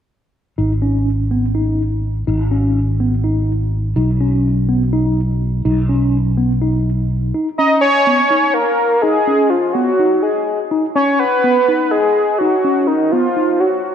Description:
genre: progressive instrumental, progressive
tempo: 249 BPM (eighths)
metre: 7/8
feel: straight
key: unclear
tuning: A4 = 444 Hz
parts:
  - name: mellow tine electric piano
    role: arpeggios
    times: 0.6-13.6 s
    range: B3 to D#4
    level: -19 LUFS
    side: left 1 dB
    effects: medium stereo tremolo
  - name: fretless electric bass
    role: bass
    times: 0.6-7.3 s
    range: G#1 to B1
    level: -16 LUFS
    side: equal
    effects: ensemble chorus
  - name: lead with added fifth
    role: melody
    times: 7.6-13.9 s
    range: D#4 to D#5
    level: -13 LUFS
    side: equal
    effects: chorus, ping-pong delay
room: moderate lush hall reverb, RT60 2.5 s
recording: dreamy mix soaked in reverb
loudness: -13 LUFS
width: side -8 dB against mid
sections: 0.6-7.3 A section; 7.3-13.9 B section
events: none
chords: 0.6 G#5; 4.0 B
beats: | 0.58 0.82 1.06 1.30 1.55 1.79 2.03 | 2.27 2.51 2.75 3.00 3.24 3.48 3.72 | 3.96 4.20 4.45 4.69 4.93 5.17 5.41 | 5.65 5.89 6.13 6.38 6.62 6.86 7.10 | 7.34 7.58 7.82 8.06 8.31 8.55 8.79 | 9.03 9.27 9.51 9.75 9.99 10.24 10.48 | 10.72 10.96 11.20 11.44 11.68 11.93 12.17 | 12.41 12.65 12.89 13.13 13.37 13.61 13.85

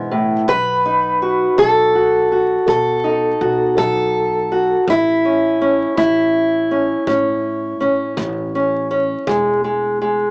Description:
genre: acoustic country blues, solo or duo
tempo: 55 BPM (dotted quarters)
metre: 12/8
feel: straight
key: unclear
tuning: A4 = 440 Hz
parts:
  - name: fingerpicked steel-string acoustic guitar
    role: melody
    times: 0.0-10.3 s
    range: E2 to B4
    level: -17 LUFS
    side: equal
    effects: cassette tape
  - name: upright bass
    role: bass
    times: 0.0-10.2 s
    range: E1 to B2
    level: -32 LUFS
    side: equal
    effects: none
  - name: kick drum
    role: drums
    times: 0.5-9.4 s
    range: none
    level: -36 LUFS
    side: equal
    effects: none
room: light reverb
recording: home recording on cassette, vinyl crackle, small speaker sound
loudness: -17 LUFS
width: mono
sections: 0.0-10.3 A section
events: none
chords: 0.5 B; 4.9 A; 9.3 E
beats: | 0.48 1.58 2.68 3.78 | 4.88 5.98 7.08 8.17 | 9.27

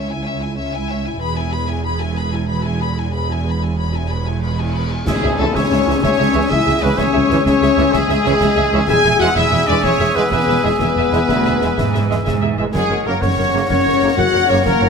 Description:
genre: cinematic, heroic adventure film score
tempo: 125 BPM (dotted quarters)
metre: 12/8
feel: straight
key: unclear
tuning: A4 = 439 Hz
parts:
  - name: warm symphonic violin section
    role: melody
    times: 0.0-14.9 s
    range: G#4 to B5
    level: -23 LUFS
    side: left 6 dB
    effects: none
  - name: dark symphonic violin section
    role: second line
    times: 0.0-14.9 s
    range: G#4 to G#5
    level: -27 LUFS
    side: left 4 dB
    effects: none
  - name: warm studio viola section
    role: accompaniment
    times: 0.0-14.9 s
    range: C#4 to E5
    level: -26 LUFS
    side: right 1 dB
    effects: none
  - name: dark symphonic double bass section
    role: bass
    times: 0.0-14.9 s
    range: E1 to C#2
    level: -22 LUFS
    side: right 3 dB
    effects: none
  - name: warm symphonic cello section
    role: bass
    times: 0.0-14.9 s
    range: C#2 to G#2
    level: -23 LUFS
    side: right 3 dB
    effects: none
  - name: cymbal swell and tam-tam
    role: percussion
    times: 1.2-6.3 s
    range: none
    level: -29 LUFS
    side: left 3 dB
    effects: none
  - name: bright small flute group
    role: second line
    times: 5.1-14.9 s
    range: F#5 to G#5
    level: -26 LUFS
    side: left 4 dB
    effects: none
  - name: clear oboe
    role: second line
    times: 5.1-14.9 s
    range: C#5 to E5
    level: -27 LUFS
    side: right 4 dB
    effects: none
  - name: warm clarinet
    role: second line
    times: 5.1-14.9 s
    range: G#4 to A#4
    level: -28 LUFS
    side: left 2 dB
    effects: none
  - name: dark French horn section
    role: sustained chords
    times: 5.1-14.9 s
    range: G#3 to G#4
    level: -20 LUFS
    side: left 6 dB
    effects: none
  - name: clear trumpet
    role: stabs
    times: 5.1-14.9 s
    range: G#4 to G#5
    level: -22 LUFS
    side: right 2 dB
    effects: none
  - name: concert snare drum, clash cymbals and concert bass drum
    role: drums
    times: 5.1-14.8 s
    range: none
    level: -26 LUFS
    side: equal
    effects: none
  - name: clear trombone section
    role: sustained chords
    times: 5.4-14.6 s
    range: C#3 to C#4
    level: -26 LUFS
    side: right 5 dB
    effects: none
room: light reverb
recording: close, detailed microphones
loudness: -14 LUFS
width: side -5 dB against mid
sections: 0.0-5.1 A section; 5.1-14.9 B section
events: band accent 5.1-5.4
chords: 0.0 C#m; 1.2 E; 5.1 C#m; 8.9 E; 12.7 F#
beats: 0.26 0.73 | 1.21 1.69 2.17 2.65 | 3.13 3.62 4.10 4.58 | 5.07 5.55 6.03 6.51 | 6.99 7.46 7.94 8.41 | 8.89 9.37 9.84 10.32 | 10.81 11.29 11.78 12.26 | 12.75 13.23 13.71 14.19 | 14.67

